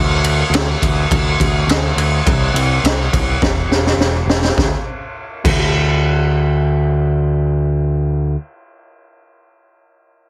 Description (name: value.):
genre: quiet-loud alternative rock.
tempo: 104 BPM.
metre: 4/4.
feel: straight.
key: unclear.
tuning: A4 = 440 Hz.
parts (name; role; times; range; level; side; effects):
growling picked electric bass; bass; 0.0-8.3 s; E1 to D2; -18 LUFS; equal; overdrive.
raw garage drum kit; drums; 0.2-5.6 s; crash cymbal, kick drum, ride cymbal, snare drum; -19 LUFS; equal; none.
room: little or no reverb.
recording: heavily compressed radio sound.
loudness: -16 LUFS.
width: mono.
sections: 0.0-4.6 A section; 4.6-6.9 B section.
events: drum fill 3.4-4.6.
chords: none.